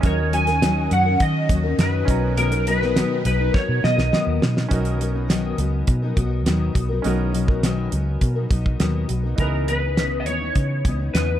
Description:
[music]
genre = indie pop, bedroom pop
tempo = 103 BPM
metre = 4/4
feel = straight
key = unclear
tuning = A4 = 440 Hz
[part]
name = electric slide guitar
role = melody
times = 0.0-4.4, 9.4-11.4 s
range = A#4 to G#5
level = -23 LUFS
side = equal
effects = ensemble chorus
[part]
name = bright upright piano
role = accompaniment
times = 0.0-11.4 s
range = C#4 to A#5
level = -32 LUFS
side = right 8 dB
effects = cassette tape
[part]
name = fingerpicked steel-string acoustic guitar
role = accompaniment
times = 0.0-11.4 s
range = B2 to A#4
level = -26 LUFS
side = left 4 dB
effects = ensemble chorus, warbly pitch drift
[part]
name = string machine, violas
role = sustained chords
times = 0.0-4.7 s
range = D#3 to F#4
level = -31 LUFS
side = equal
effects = phaser, ensemble chorus
[part]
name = vintage muted fingered electric bass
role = bass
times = 0.0-11.4 s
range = B1 to D#3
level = -23 LUFS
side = equal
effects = none
[part]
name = damped 70s drum kit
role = drums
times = 0.0-11.3 s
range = hi-hat, kick drum, snare drum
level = -22 LUFS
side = right 1 dB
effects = none
[sound]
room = light reverb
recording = dark, warm production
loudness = -18 LUFS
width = side -11 dB against mid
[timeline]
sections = 0.0-4.7 A section; 4.7-9.4 B section; 9.4-11.4 C section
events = drum fill 3.5-4.7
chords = 0.0 D#m7; 2.1 Bmaj7; 9.4 C#m9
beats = | 0.03 0.62 1.20 1.79 | 2.37 2.96 3.54 4.12 | 4.71 5.29 5.88 6.46 | 7.05 7.63 8.22 8.80 | 9.39 9.97 10.56 11.14

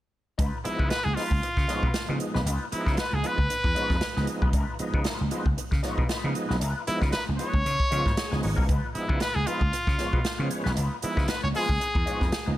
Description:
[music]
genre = funk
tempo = 116 BPM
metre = 4/4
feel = swing 56% on 16ths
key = Db mixolydian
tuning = A4 = 440 Hz
[part]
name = electric guitar at the edge of break-up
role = accompaniment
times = 0.4-12.5 s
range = Eb4 to Db5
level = -37 LUFS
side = left 5 dB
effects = wah
[part]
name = vintage slap bass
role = bass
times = 0.4-12.6 s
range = Ab1 to Db3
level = -28 LUFS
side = equal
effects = none
[part]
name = swinging big-band drum kit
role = drums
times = 0.4-12.5 s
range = hi-hat, kick drum, snare drum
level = -28 LUFS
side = equal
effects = none
[part]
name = brilliant trumpet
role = melody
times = 0.6-12.6 s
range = Fb4 to Db5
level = -29 LUFS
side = equal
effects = none
[part]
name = overdriven tonewheel organ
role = stabs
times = 0.6-12.6 s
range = F3 to Db5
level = -34 LUFS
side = right 2 dB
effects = chorus vibrato, slow rotary speaker
[sound]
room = small room ambience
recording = none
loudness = -24 LUFS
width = side -15 dB against mid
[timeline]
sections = 0.4-12.6 A section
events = tonewheel organ fill 7.9-8.7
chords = 0.4 Db9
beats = | 0.39 0.91 1.43 1.94 | 2.46 2.98 3.50 4.02 | 4.54 5.05 5.57 6.09 | 6.61 7.13 7.65 8.17 | 8.69 9.21 9.73 10.25 | 10.77 11.29 11.81 12.33

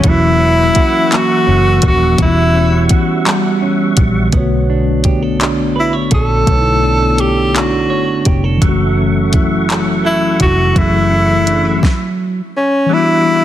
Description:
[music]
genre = slow six-eight R&B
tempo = 56 BPM (dotted quarters)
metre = 6/8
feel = straight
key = unclear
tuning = A4 = 440 Hz
[part]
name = warm tenor saxophone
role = melody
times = 0.0-13.4 s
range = C#4 to A4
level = -14 LUFS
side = equal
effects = slapback echo
[part]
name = clean electric guitar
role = second line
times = 0.0-12.4 s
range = E3 to C#5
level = -20 LUFS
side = right 6 dB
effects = none
[part]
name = mellow tine electric piano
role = accompaniment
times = 0.0-13.4 s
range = D3 to C#5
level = -17 LUFS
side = left 2 dB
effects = medium stereo tremolo
[part]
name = tonewheel organ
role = sustained chords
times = 0.0-4.3, 8.6-13.4 s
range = G3 to D6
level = -23 LUFS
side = equal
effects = chorus vibrato, slow rotary speaker
[part]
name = vintage muted fingered electric bass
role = bass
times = 0.0-11.8 s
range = D#1 to B1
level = -16 LUFS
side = equal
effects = none
[part]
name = smooth R&B drum kit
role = drums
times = 0.0-12.0 s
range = handclaps, hi-hat, kick drum, snare drum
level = -15 LUFS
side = equal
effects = none
[sound]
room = light reverb, digital ambience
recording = dense, heavily limited modern master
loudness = -10 LUFS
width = side -12 dB against mid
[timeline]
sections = 0.0-4.3 A section; 4.3-12.9 B section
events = stop 11.8-12.9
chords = 0.0 F#7/E; 2.2 Em69; 4.3 Bm9; 8.6 F#m7; 12.9 Em9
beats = | 0.04 1.11 | 2.19 3.26 | 4.33 5.40 | 6.47 7.54 | 8.62 9.69 | 10.76 11.83 | 12.90

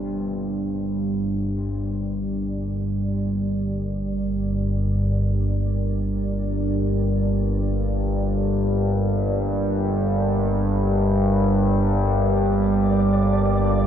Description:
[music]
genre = dark ambient drone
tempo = free time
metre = none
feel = none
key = G minor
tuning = A4 = 440 Hz
[part]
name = deep dark ambient pad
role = sustained chords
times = 0.7-13.9 s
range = G3 to D5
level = -30 LUFS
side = equal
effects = chorus, built-in reverb
[part]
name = old church bells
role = arpeggios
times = 0.0-4.6 s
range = C#3 to C4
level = -51 LUFS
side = left 2 dB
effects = none
[part]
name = analog drone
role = drone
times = 0.0-13.9 s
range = G1 to G2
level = -21 LUFS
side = equal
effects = chorus, phaser
[part]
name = flickering grainy texture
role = texture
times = 12.4-13.9 s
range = D5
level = -29 LUFS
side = equal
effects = built-in reverb
[sound]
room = wet cathedral reverb, RT60 6.6 s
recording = dark, warm production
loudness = -20 LUFS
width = side -9 dB against mid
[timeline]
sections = 0.0-13.9 A section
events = fade-in on ambient pad 0.0-13.9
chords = 0.0 Gm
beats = free time

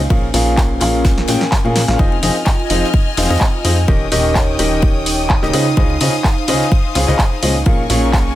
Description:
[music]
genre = piano house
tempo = 127 BPM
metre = 4/4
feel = swing 54% on 16ths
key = unclear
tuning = A4 = 439 Hz
[part]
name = plucky analog bass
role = bass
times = 0.0-8.3 s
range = Eb1 to F2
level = -18 LUFS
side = equal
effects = tube saturation, sidechain pumping
[part]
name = airy breathy pad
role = texture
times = 0.0-8.4 s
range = Db4 to Ab5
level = -24 LUFS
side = right 2 dB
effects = chorus, sidechain pumping
[part]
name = clear grand piano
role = riff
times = 0.1-8.3 s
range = Bb2 to G5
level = -18 LUFS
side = left 1 dB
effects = sidechain pumping, dub echo
[part]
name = crisp fusion drum kit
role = drums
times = 0.1-8.3 s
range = ride cymbal, snare drum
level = -30 LUFS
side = left 3 dB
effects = sidechain pumping on cymbals, high-pass filter on cymbals, high-pass filter on snare, high-pass filter on room
[part]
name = electronic kick drum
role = drums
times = 0.1-8.2 s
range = none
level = -14 LUFS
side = equal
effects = none
[part]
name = house drum kit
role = drums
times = 0.3-8.2 s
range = handclaps, hi-hat, snare drum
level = -20 LUFS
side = equal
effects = none
[part]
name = clear symphonic string section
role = sustained chords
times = 2.0-8.4 s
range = Bb4 to F6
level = -25 LUFS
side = left 5 dB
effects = sidechain pumping
[sound]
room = studio reverb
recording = faint mains hum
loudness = -12 LUFS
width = side -14 dB against mid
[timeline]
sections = 0.0-8.4 A section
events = drum fill 1.0-2.0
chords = 0.1 Bbm7; 2.0 Fm7; 3.9 Eb7; 5.5 Dbmaj9; 7.7 Bbm7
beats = | 0.10 0.58 1.05 1.52 | 1.99 2.46 2.94 3.41 | 3.88 4.36 4.83 5.30 | 5.77 6.25 6.72 7.19 | 7.66 8.13

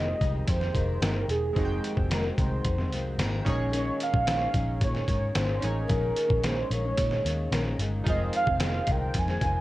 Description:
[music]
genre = indie pop, bedroom pop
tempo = 111 BPM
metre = 4/4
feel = straight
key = F minor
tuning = A4 = 440 Hz
[part]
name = warm velvety synth lead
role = melody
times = 0.0-9.6 s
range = Ab4 to Ab5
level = -30 LUFS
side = right 2 dB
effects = wide subtle chorus, digital delay
[part]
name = chorused retro synth keys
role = accompaniment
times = 0.0-9.6 s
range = Ab3 to G5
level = -37 LUFS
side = right 1 dB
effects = cassette tape
[part]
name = nylon-string guitar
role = accompaniment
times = 0.0-9.6 s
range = F2 to Db4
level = -35 LUFS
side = left 3 dB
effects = lush chorus, vibrato effect
[part]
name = vintage muted picked electric bass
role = bass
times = 0.0-9.6 s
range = E1 to Bb2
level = -29 LUFS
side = equal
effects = none
[part]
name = trip hop sampler-style drum kit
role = drums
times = 0.2-9.5 s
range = hi-hat, kick drum, snare drum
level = -29 LUFS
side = equal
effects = none
[sound]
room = light reverb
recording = worn, warbling old tape, cassette tape, warbly pitch drift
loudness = -24 LUFS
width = side -16 dB against mid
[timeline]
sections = 0.0-9.6 A section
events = none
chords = 0.0 Fm7; 3.5 Bbm7; 8.1 Fm7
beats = 0.48 1.02 | 1.56 2.10 2.65 3.19 | 3.73 4.27 4.81 5.35 | 5.90 6.44 6.98 7.52 | 8.06 8.60 9.14

